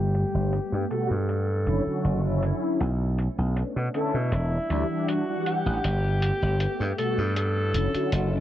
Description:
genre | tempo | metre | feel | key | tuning
vaporwave | 79 BPM | 4/4 | straight | unclear | A4 = 440 Hz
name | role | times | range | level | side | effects
clear alto saxophone | melody | 0.0-8.4 s | E4 to A4 | -31 LUFS | equal | tape echo
soft string machine | sustained chords | 0.2-8.4 s | D3 to F#5 | -35 LUFS | left 1 dB | phaser, ensemble chorus, vintage 12-bit sampler grit
slap bass | bass | 0.0-8.4 s | E1 to B2 | -25 LUFS | equal | none
electronic hi-hat | drums | 0.1-8.3 s | none | -37 LUFS | left 1 dB | overdrive, low-pass filter on snare, vintage 12-bit sampler grit, low-pass filter on hats, low-pass filter on cymbals, low-pass filter on room
mellow synth brass | accompaniment | 0.9-8.4 s | B2 to F#5 | -29 LUFS | equal | ensemble chorus, vintage 12-bit sampler grit, tape echo
room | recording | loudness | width
light reverb, digital ambience | cassette tape, low-pass filter | -23 LUFS | side -12 dB against mid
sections
0.0-8.4 A section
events
filter sweep on string machine 0.0-8.4; filter sweep 0.0-8.4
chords
0.0 Gmaj9; 1.3 Dmaj9/F#; 2.8 Bm9; 4.3 Em9; 5.8 Gmaj9; 7.4 Dmaj9

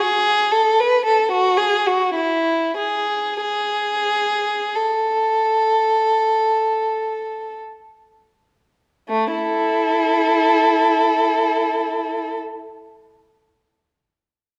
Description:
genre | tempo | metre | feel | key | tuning
classical, baroque-style suite movement for unaccompanied violin | 37-57 BPM | 4/4 | rubato | unclear | A4 = 440 Hz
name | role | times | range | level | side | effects
rich violin | solo | 0.0-12.4 s | A3 to B4 | -19 LUFS | equal | none
room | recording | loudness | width
wet recital hall reverb, RT60 1.5 s | dark, warm production | -19 LUFS | mono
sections
0.0-9.1 A section; 9.1-14.6 B section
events
slowing down 0.0-9.1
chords
none

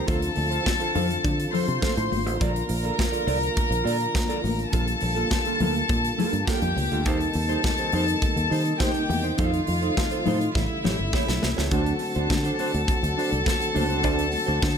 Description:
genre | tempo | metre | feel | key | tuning
disco | 103 BPM | 4/4 | straight | G minor | A4 = 440 Hz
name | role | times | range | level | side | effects
clear studio string section | second line | 0.0-14.8 s | E4 to C6 | -27 LUFS | left 2 dB | none
mellow electric guitar | accompaniment | 0.0-14.7 s | Bb3 to D5 | -30 LUFS | right 5 dB | wide subtle chorus
percussive tonewheel organ | sustained chords | 0.0-14.8 s | C3 to F#4 | -31 LUFS | left 2 dB | fast rotary speaker
fingered electric bass | bass | 0.1-14.8 s | G1 to Eb3 | -27 LUFS | equal | none
modern studio drum kit | drums | 0.1-14.8 s | hi-hat, kick drum, snare drum | -28 LUFS | equal | none
congas | percussion | 0.1-14.8 s | none | -32 LUFS | left 6 dB | none
room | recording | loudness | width
light reverb | none | -22 LUFS | side -7 dB against mid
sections
0.0-11.7 A section; 11.7-14.8 B section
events
drum fill 10.6-11.7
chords
0.1 Dm7; 2.4 Bbmaj7; 4.7 Gm9/Bb; 7.1 Eb6; 9.4 F7; 10.6 A7; 11.7 D7

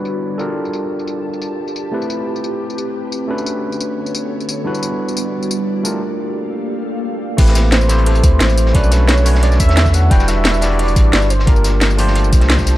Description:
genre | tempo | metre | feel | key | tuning
liquid drum and bass | 176 BPM | 4/4 | straight | unclear | A4 = 442 Hz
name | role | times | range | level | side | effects
overdriven tine electric piano | accompaniment | 0.0-12.8 s | G3 to D5 | -21 LUFS | equal | dub echo
ethereal airy pad | sustained chords | 0.0-12.8 s | F3 to A5 | -26 LUFS | right 1 dB | ensemble chorus, built-in reverb, phaser, sidechain pumping
garage drum kit | drums | 0.1-12.7 s | crash cymbal, hi-hat, snare drum, tambourine | -20 LUFS | equal | none
saturated sub bass | bass | 7.4-12.8 s | E1 to E2 | -14 LUFS | equal | none
crunchy breakbeat drum kit | drums | 7.4-12.8 s | hi-hat, snare drum | -26 LUFS | equal | high-pass filter on hats, high-pass filter on snare, high-pass filter on room
electronic kick drum | drums | 7.4-12.7 s | none | -13 LUFS | equal | none
warm velvety synth lead | melody | 7.7-11.9 s | A4 to G5 | -22 LUFS | right 1 dB | chorus, tape echo
room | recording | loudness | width
light reverb | dark, warm production, low-pass filter | -13 LUFS | side -15 dB against mid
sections
0.0-7.4 A section; 7.4-12.8 B section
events
break 6.0-7.4; drop 7.4-12.8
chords
0.4 Gm9; 1.9 Am9; 3.3 Bm9; 4.7 Em9; 5.8 Gm9; 7.4 Am9; 8.7 Bm9; 10.1 Em9; 11.3 Gm9

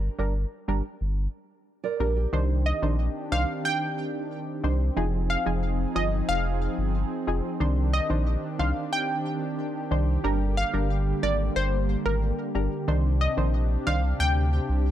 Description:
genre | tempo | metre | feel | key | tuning
dancehall | 91 BPM | 4/4 | straight | C minor | A4 = 441 Hz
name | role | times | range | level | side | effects
punchy chord stab | accompaniment | 0.0-14.0 s | Eb3 to C5 | -31 LUFS | equal | chorus
saturated sub bass | bass | 0.0-14.9 s | F1 to D2 | -25 LUFS | equal | none
nylon-string guitar | arpeggios | 1.8-2.5 s | G4 to D5 | -30 LUFS | right 8 dB | none
warm analog pad | sustained chords | 2.3-14.9 s | C3 to Ab4 | -31 LUFS | right 1 dB | chorus, tremolo
analog pluck | melody | 2.7-14.7 s | Bb4 to G5 | -29 LUFS | equal | chorus, digital delay
room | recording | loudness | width
light reverb, digital ambience | dark, warm production | -24 LUFS | side -11 dB against mid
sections
0.0-2.3 A section; 2.3-12.9 B section; 12.9-14.9 C section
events
none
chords
0.0 Gm; 2.3 Cmadd9; 5.0 Fm7; 7.6 Cmadd9; 10.2 Gm; 12.9 Cmadd9

